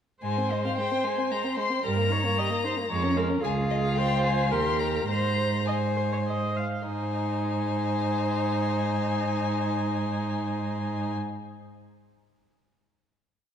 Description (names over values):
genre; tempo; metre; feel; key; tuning
quick classical-period movement for string quartet; 97-114 BPM; 3/4; rubato; Ab major; A4 = 440 Hz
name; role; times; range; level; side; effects
warm violin; melody; 0.2-11.1 s; Eb5 to C6; -32 LUFS; left 8 dB; none
rich violin; second line; 0.2-11.1 s; G3 to C5; -32 LUFS; left 2 dB; none
rich viola; accompaniment; 0.2-11.1 s; Eb4 to F5; -31 LUFS; right 2 dB; none
rich cello; bass; 0.2-11.1 s; Db2 to Ab2; -29 LUFS; right 3 dB; none
room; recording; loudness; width
moderate scoring stage reverb, RT60 2.0 s; dark, warm production; -25 LUFS; side -8 dB against mid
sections
0.2-6.9 theme; 6.9-10.5 final chord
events
slowing down 2.6-6.9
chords
0.2 Ab; 1.8 Eb/G; 2.9 Db/F; 3.4 Db; 4.5 Eb; 5.1 Ab